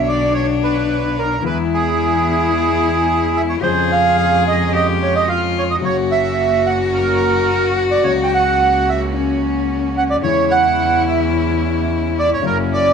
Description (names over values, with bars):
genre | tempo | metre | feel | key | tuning
tango | 109 BPM | 4/4 | rubato | unclear | A4 = 441 Hz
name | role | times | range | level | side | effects
bandoneon | melody | 0.0-12.9 s | G#4 to G5 | -17 LUFS | right 5 dB | none
warm cello | second line | 0.0-12.9 s | C#4 to G#4 | -19 LUFS | left 8 dB | none
warm concert grand piano | accompaniment | 0.0-12.9 s | B1 to C#5 | -26 LUFS | left 10 dB | none
rich chamber string section | stabs | 0.0-12.9 s | F#3 to C#5 | -27 LUFS | right 10 dB | none
clear double bass | bass | 0.0-12.9 s | F#1 to E#2 | -23 LUFS | right 2 dB | none
room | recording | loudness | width
wet spring reverb, RT60 1.2 s | 1960s-style stereo with parts hard left and right | -14 LUFS | side -6 dB against mid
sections
0.0-12.9 A section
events
none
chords
0.0 Bmadd9; 1.4 E; 3.6 C#/E#; 5.8 F#; 10.2 C#m/E; 12.4 F#7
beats
0.34 0.90 | 1.45 2.00 2.54 3.09 | 3.63 4.18 4.73 5.28 | 5.83 6.38 6.93 7.49 | 8.04 8.60 9.15 9.70 | 10.25 10.80 11.34 11.88 | 12.43